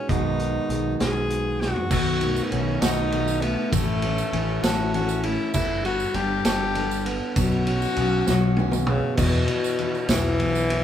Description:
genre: folk rock and heartland rock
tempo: 66 BPM (dotted quarters)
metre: 6/8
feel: straight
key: unclear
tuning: A4 = 439 Hz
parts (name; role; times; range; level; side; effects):
- clear tenor saxophone; melody; 0.0-10.8 s; B2 to G#4; -26 LUFS; left 2 dB; none
- picked steel-string acoustic guitar; accompaniment; 0.0-10.8 s; E2 to A4; -28 LUFS; left 4 dB; none
- electric guitar through a small old amp; riff; 0.0-9.2 s; A2 to A4; -30 LUFS; right 4 dB; none
- picked electric bass; bass; 0.1-10.8 s; G1 to E2; -28 LUFS; equal; none
- vintage drum kit; drums; 0.1-10.8 s; crash cymbal, hi-hat, kick drum, ride cymbal, snare drum, toms; -27 LUFS; right 1 dB; none
- tambourine; percussion; 1.9-10.7 s; none; -37 LUFS; right 8 dB; none
room: wet studio reverb, RT60 0.6 s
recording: band playing live in one room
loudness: -21 LUFS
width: side -10 dB against mid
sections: 0.0-1.9 A section; 1.9-9.2 B section; 9.2-10.8 C section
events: drum fill 1.6-1.9, 8.3-9.2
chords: 0.0 B6; 1.9 B7; 3.7 A; 5.5 Gadd9; 7.4 Bsus2; 9.2 Bsus4

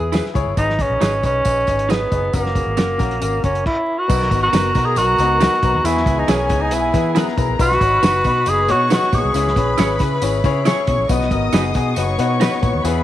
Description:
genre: uptempo 1960s-style soul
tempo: 137 BPM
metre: 4/4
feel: straight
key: B major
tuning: A4 = 440 Hz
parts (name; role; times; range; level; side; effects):
- breathy tenor saxophone; melody; 0.0-10.0 s; A#3 to G#4; -18 LUFS; right 1 dB; tape echo
- warm concert grand piano; accompaniment; 0.0-13.0 s; G#2 to C#5; -23 LUFS; left 7 dB; none
- vintage muted fingered electric bass; bass; 0.0-13.0 s; F#1 to E3; -22 LUFS; equal; none
- clean electric guitar; stabs; 0.1-12.5 s; C#4 to C#5; -26 LUFS; right 8 dB; none
- warm soul drum kit; drums; 0.1-13.0 s; crash cymbal, hi-hat, kick drum, snare drum; -21 LUFS; equal; none
- tambourine; percussion; 0.1-12.9 s; none; -37 LUFS; right 10 dB; none
- warm chamber string section; second line; 4.1-13.0 s; G#4 to D#6; -24 LUFS; equal; none
room: moderate echo chamber reverb, RT60 1.8 s, small room ambience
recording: 1960s-style stereo with parts hard left and right, vinyl crackle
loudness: -15 LUFS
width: side -13 dB against mid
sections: 0.0-4.1 A section; 4.1-13.0 B section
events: none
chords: 0.0 E; 0.6 G#m; 2.3 F#; 4.1 B; 5.8 E; 7.6 B; 9.3 C#m; 11.1 B

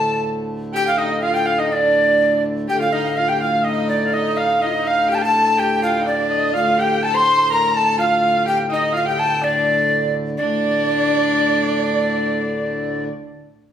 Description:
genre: medieval dance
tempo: 125 BPM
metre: 2/4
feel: straight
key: D phrygian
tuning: A4 = 440 Hz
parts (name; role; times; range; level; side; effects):
- tenor recorder; melody; 0.0-13.0 s; D5 to C6; -18 LUFS; equal; none
- rich fiddle; second line; 0.0-13.0 s; D4 to C5; -26 LUFS; left 3 dB; none
- warm viola; second line; 0.0-13.0 s; D5 to C6; -25 LUFS; right 2 dB; none
- pedal harmonium; drone; 0.0-13.1 s; D2 to A2; -24 LUFS; equal; none
room: wet large studio reverb, RT60 1.2 s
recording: band playing live in one room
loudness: -16 LUFS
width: side -9 dB against mid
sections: 0.0-2.7 A section; 2.7-10.4 A section; 10.4-12.3 B section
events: none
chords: none

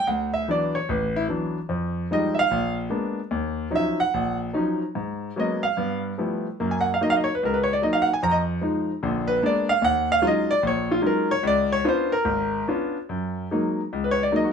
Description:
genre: solo jazz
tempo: 147 BPM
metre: 4/4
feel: swing 65% on 8ths, rubato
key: F# major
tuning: A4 = 439 Hz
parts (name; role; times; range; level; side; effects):
- clear grand piano; solo; 0.0-14.5 s; G#1 to A#5; -21 LUFS; equal; none
room: moderate studio reverb, RT60 0.6 s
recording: minimal, uncompressed stereo recording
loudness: -21 LUFS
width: side -6 dB against mid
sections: 0.1-13.1 A section; 13.1-14.5 A section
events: grand piano solo 0.0-13.1, 13.1-14.5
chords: 0.1 D69; 1.7 Fm9; 2.5 A#7b9; 3.3 D#m9; 4.9 G#m11; 5.7 G13; 6.6 F#6; 8.2 Fm7; 9.0 A#7b9; 9.8 D#m11; 11.4 C#7b9; 13.1 F#69

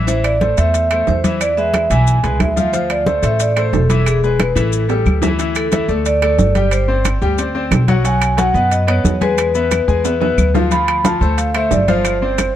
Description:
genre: latin, salsa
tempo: 180 BPM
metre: 4/4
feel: straight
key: A harmonic minor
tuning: A4 = 440 Hz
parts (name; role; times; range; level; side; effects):
- bright grand piano; accompaniment; 0.0-12.5 s; E3 to G#5; -20 LUFS; left 5 dB; none
- upright bass; bass; 0.0-12.5 s; E1 to F#2; -18 LUFS; equal; none
- vibraphone with medium mallets; melody; 0.1-12.6 s; G#4 to B5; -18 LUFS; right 1 dB; none
- congas; percussion; 0.1-12.6 s; none; -22 LUFS; left 2 dB; none
- maracas; percussion; 0.1-12.6 s; none; -30 LUFS; left 8 dB; none
- timbales; percussion; 0.1-12.6 s; none; -24 LUFS; right 9 dB; none
- claves; percussion; 0.2-12.5 s; none; -28 LUFS; equal; none
room: light reverb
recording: dark, warm production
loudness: -13 LUFS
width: side -11 dB against mid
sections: 0.0-5.4 A section; 5.4-12.6 B section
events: drum fill 4.9-5.4, 10.0-10.7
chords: 0.1 Am; 1.4 E; 2.7 Dm7; 4.1 E; 4.7 A5; 5.4 Dsus2; 6.7 Gsus4; 8.1 B; 9.4 E; 10.7 Dm7; 12.0 G7sus4

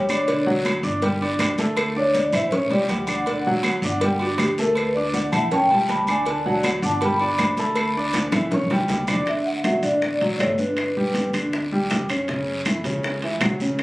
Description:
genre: Afro-Cuban jazz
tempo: 160 BPM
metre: 4/4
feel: straight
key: D major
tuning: A4 = 440 Hz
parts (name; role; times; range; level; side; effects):
- vibraphone with soft mallets; melody; 0.0-11.3 s; F#4 to B5; -23 LUFS; equal; none
- warm concert grand piano; accompaniment; 0.0-13.8 s; C#3 to D6; -24 LUFS; equal; none
- upright bass; bass; 0.0-13.8 s; G1 to F#2; -31 LUFS; equal; none
- agogo bells and timbales; percussion; 0.1-13.8 s; none; -30 LUFS; right 2 dB; none
- claves; percussion; 0.1-13.8 s; none; -30 LUFS; left 1 dB; none
- congas; percussion; 0.1-13.8 s; none; -30 LUFS; equal; none
- guiro; percussion; 0.1-13.8 s; none; -34 LUFS; left 1 dB; none
- cowbell and bongos; percussion; 0.3-13.8 s; none; -29 LUFS; left 1 dB; none
room: moderate studio reverb, RT60 0.8 s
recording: recorded on a phone in the room, club reverb, compression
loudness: -19 LUFS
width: side -19 dB against mid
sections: 0.0-9.3 A section; 9.3-13.8 B section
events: vibraphone solo 0.0-9.3; drum fill 2.7-3.3, 8.1-9.3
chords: 0.3 D; 1.0 Gsus2; 1.8 Dsus2; 2.5 A7; 3.3 D; 4.0 Gsus2; 4.8 Dsus2; 5.5 A7; 6.3 D; 7.0 Gadd9; 7.8 Dsus2; 8.5 A7; 9.3 D; 10.8 G; 12.3 F#5

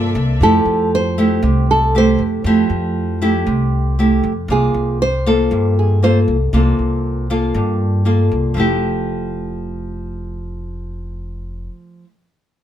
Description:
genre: bossa nova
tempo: 118 BPM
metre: 4/4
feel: straight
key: F major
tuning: A4 = 440 Hz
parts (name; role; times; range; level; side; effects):
- nylon-string guitar; melody; 0.0-6.2 s; F4 to C5; -18 LUFS; right 2 dB; none
- nylon-string guitar; accompaniment; 0.0-12.1 s; G2 to A4; -18 LUFS; equal; none
- upright bass; bass; 0.0-11.7 s; F1 to G2; -19 LUFS; equal; none
room: light reverb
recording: none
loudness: -14 LUFS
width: side -10 dB against mid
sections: 0.4-8.6 A section; 8.6-12.6 B section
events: nylon-string guitar solo 0.4-8.6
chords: 0.4 Fmaj9; 4.5 C7sus4; 8.6 Fmaj9

